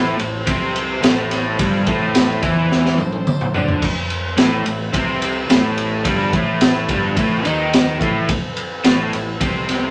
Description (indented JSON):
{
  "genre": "psychedelic rock",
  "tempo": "108 BPM",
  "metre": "4/4",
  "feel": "straight",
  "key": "A minor",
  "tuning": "A4 = 440 Hz",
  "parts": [
    { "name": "combo organ", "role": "sustained chords", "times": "0.0-9.9 s", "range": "C4 to C5", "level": "-34 LUFS", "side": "equal", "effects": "none" },
    { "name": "raw garage guitar", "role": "riff", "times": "0.0-9.9 s", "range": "G2 to E4", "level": "-22 LUFS", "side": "equal", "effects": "overdrive" },
    { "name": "fuzz fingered electric bass", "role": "bass", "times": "0.0-9.9 s", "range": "G1 to E2", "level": "-29 LUFS", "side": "equal", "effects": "overdrive" },
    { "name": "raw garage drum kit", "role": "drums", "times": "0.2-9.8 s", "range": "crash cymbal, kick drum, ride cymbal, snare drum, toms", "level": "-21 LUFS", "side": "equal", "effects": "none" },
    { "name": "tambourine", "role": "percussion", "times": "0.2-9.8 s", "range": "none", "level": "-44 LUFS", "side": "equal", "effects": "none" }
  ],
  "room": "moderate studio ambience, RT60 0.5 s",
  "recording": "none",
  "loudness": "-18 LUFS",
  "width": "mono",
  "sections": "0.0-9.9 A section",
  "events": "drum fill 2.7-3.8",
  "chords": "0.0 Am"
}